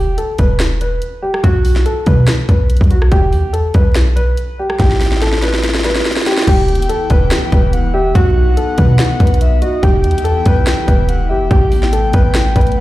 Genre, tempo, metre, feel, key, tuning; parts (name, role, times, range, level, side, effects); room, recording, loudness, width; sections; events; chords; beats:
hip hop, trap; 143 BPM; 4/4; half-time; E harmonic minor; A4 = 435 Hz
dark grand piano; melody; 0.0-12.8 s; F#4 to B4; -19 LUFS; equal; digital delay
warm 808-style bass; bass; 0.0-12.8 s; E1 to B2; -14 LUFS; equal
trap drum kit; drums; 0.2-12.8 s; crash cymbal, hi-hat, kick drum, rim click, snare drum; -14 LUFS; equal
breathy flute-like synth lead; second line; 6.5-12.8 s; D#5 to G5; -22 LUFS; left 3 dB; chorus, digital delay
airy breathy pad; sustained chords; 6.5-12.8 s; C3 to G4; -23 LUFS; equal; chorus
little or no reverb; played on a big sound system in a bare room, large studio reverb, vinyl crackle; -11 LUFS; side -16 dB against mid
0.0-6.5 A section; 6.5-12.8 B section
drum fill 4.8-6.5
0.0 Em; 1.4 B5; 3.1 Em; 4.8 Asus2; 6.5 Em; 8.2 B; 9.8 Em; 11.5 Amadd9
0.18 0.60 1.02 | 1.44 1.86 2.28 2.70 | 3.12 3.54 3.96 4.38 | 4.79 5.21 5.63 6.05 | 6.47 6.89 7.31 7.73 | 8.15 8.57 8.99 9.41 | 9.83 10.25 10.67 11.09 | 11.51 11.93 12.35 12.77